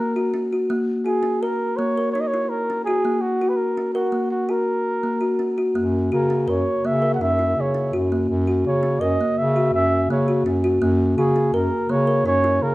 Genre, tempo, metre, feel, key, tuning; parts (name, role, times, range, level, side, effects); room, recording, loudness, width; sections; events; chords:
contemporary instrumental, chamber music in an uneven meter; 166 BPM; 7/4; straight; F# mixolydian; A4 = 440 Hz
mellow flugelhorn; melody; 0.0-12.7 s; F#4 to F#5; -23 LUFS; right 1 dB
kalimba; arpeggios; 0.0-12.7 s; A#3 to A#4; -22 LUFS; left 1 dB
warm bass clarinet; bass; 5.8-12.7 s; F#2 to C#3; -22 LUFS; equal
moderate recital hall reverb, RT60 1.8 s; -18 LUFS; side -18 dB against mid
0.0-12.7 A section
0.0 F#